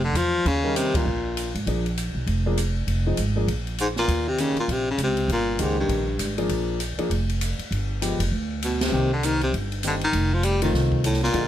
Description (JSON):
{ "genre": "jazz, small-group swing and bop", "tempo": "199 BPM", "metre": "4/4", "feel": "swing 60% on 8ths", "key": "unclear", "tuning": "A4 = 440 Hz", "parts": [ { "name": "bright baritone saxophone", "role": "melody", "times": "0.0-1.6, 3.8-6.3, 8.6-11.5 s", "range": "G2 to G3", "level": "-24 LUFS", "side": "left 1 dB", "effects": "plate reverb" }, { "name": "upright bass", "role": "bass", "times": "0.0-11.5 s", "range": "F1 to E2", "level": "-25 LUFS", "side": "right 1 dB", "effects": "none" }, { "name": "open jazz drum kit", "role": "drums", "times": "0.2-11.4 s", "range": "hi-hat, kick drum, ride cymbal, snare drum", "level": "-31 LUFS", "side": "equal", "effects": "none" }, { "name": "warm grand piano", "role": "accompaniment", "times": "0.6-11.5 s", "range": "D3 to Bb4", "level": "-28 LUFS", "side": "left 1 dB", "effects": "none" } ], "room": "light reverb", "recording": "none", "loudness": "-21 LUFS", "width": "side -11 dB against mid", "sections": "0.0-11.5 A section", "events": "band accent 0.9, 8.8", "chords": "0.5 Eb7; 1.7 Bb7; 2.9 Fm7; 3.5 N.C.; 4.1 Eb7; 6.5 Bb7; 7.7 G7b9; 8.9 Cm7; 10.1 F7" }